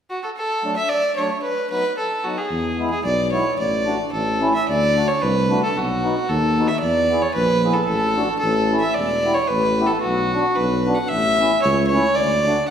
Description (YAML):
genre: alpine folk, alpine dance band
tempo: 112 BPM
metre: 2/4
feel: straight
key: D major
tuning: A4 = 440 Hz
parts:
  - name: warm fiddle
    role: melody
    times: 0.1-12.7 s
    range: F#4 to F#5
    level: -20 LUFS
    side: right 1 dB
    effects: none
  - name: mellow accordion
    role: accompaniment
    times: 0.6-12.6 s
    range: F#3 to A4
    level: -25 LUFS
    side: equal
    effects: none
  - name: mellow tuba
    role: bass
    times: 2.5-12.5 s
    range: E1 to E2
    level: -22 LUFS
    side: left 1 dB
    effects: none
room: wet recital hall reverb, RT60 1.8 s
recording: heard from further back in the room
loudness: -17 LUFS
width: side -8 dB against mid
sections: 0.4-4.7 A section; 4.7-12.7 B section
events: none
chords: 0.4 D; 1.4 B; 2.5 E; 3.6 D/A; 4.1 A; 4.7 D; 5.8 B; 6.8 E; 7.9 D/A; 8.4 A; 9.0 Em; 10.1 Bm; 11.1 A; 12.2 D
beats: | 0.37 0.91 | 1.45 1.98 | 2.52 3.05 | 3.59 4.13 | 4.68 5.23 | 5.77 6.30 | 6.83 7.36 | 7.89 8.43 | 8.97 9.51 | 10.05 10.59 | 11.12 11.65 | 12.19